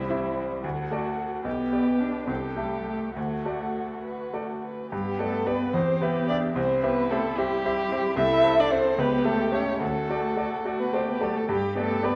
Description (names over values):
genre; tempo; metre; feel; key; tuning
quick classical-period movement for piano quartet; 67-76 BPM (dotted quarters); 6/8; rubato; G major; A4 = 444 Hz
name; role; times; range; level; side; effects
muted violin; melody; 0.0-12.2 s; G4 to E5; -31 LUFS; equal; none
muted cello; second line; 0.0-12.2 s; G3 to E4; -33 LUFS; equal; none
muted violin; second line; 0.0-12.2 s; B3 to A4; -36 LUFS; equal; none
bright grand piano; accompaniment; 0.0-12.2 s; B1 to E5; -31 LUFS; equal; none
room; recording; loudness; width
wet recital hall reverb, RT60 1.3 s; none; -26 LUFS; mono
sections
0.0-4.9 A section; 4.9-12.2 B section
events
none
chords
0.0 C; 0.6 D; 1.5 G/B; 2.3 Am7/C; 3.2 D; 4.9 G; 5.7 Em; 6.6 C; 8.2 Am/C; 9.0 A7/C#; 9.8 D; 11.5 G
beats
0.64 | 1.46 2.29 | 3.17 4.05 | 4.92 5.75 | 6.57 7.39 | 8.19 8.98 | 9.81 10.65 | 11.49